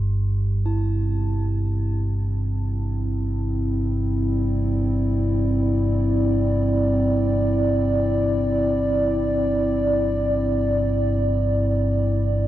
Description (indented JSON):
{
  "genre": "dark ambient drone",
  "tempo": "free time",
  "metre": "none",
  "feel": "none",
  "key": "unclear",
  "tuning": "A4 = 440 Hz",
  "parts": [
    { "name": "deep rumbling drone", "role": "drone", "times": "0.0-12.5 s", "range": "G1 to G2", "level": "-22 LUFS", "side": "equal", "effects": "built-in reverb, phaser, lush chorus" },
    { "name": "bronze singing bowl", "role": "texture", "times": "0.0-12.5 s", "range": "E4 to G4", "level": "-37 LUFS", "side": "right 2 dB", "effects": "none" },
    { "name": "dark analog pad", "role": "sustained chords", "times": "0.7-12.5 s", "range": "C4 to D5", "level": "-22 LUFS", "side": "equal", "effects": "chorus" }
  ],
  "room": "moderate huge ambient reverb, RT60 9.1 s",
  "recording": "cassette tape",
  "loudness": "-19 LUFS",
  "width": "side -13 dB against mid",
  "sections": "0.0-12.5 A section",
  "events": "fade-in on singing bowl 0.0-12.5",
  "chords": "0.0 N.C.; 0.7 Cadd9"
}